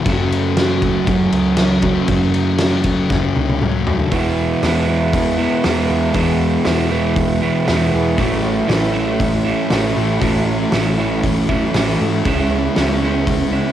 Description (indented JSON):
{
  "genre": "rock, shoegaze and dream pop",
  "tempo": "118 BPM",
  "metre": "4/4",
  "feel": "straight",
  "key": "E major",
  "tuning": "A4 = 441 Hz",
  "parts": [
    { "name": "electric guitar through a small old amp", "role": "arpeggios", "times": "0.0-13.7 s", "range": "F#3 to A4", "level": "-28 LUFS", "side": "left 7 dB", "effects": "lush chorus, cassette tape, tape echo" },
    { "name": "overdriven semi-hollow guitar", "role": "riff", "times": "0.0-13.7 s", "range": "A2 to A4", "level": "-18 LUFS", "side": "right 6 dB", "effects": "reverse reverb, cassette tape" },
    { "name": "thick fuzz guitar", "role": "riff", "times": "0.0-13.7 s", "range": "E2 to C#4", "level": "-20 LUFS", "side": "left 6 dB", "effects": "distortion, wide subtle chorus, cassette tape" },
    { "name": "hollow-body short-scale picked electric bass", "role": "bass", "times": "0.1-13.6 s", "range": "A1 to G#2", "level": "-23 LUFS", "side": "equal", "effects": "none" },
    { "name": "loose indie drum kit", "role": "drums", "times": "0.1-13.4 s", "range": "crash cymbal, hi-hat, kick drum, snare drum, toms", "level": "-21 LUFS", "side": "equal", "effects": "cassette tape" }
  ],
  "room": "light reverb, studio reverb",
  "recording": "home recording on cassette",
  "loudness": "-14 LUFS",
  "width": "side -11 dB against mid",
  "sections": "0.0-4.1 A section; 4.1-13.7 B section",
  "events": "drum fill 3.1-4.1",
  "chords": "0.1 F#m; 4.1 E; 8.2 A6; 12.2 C#m7"
}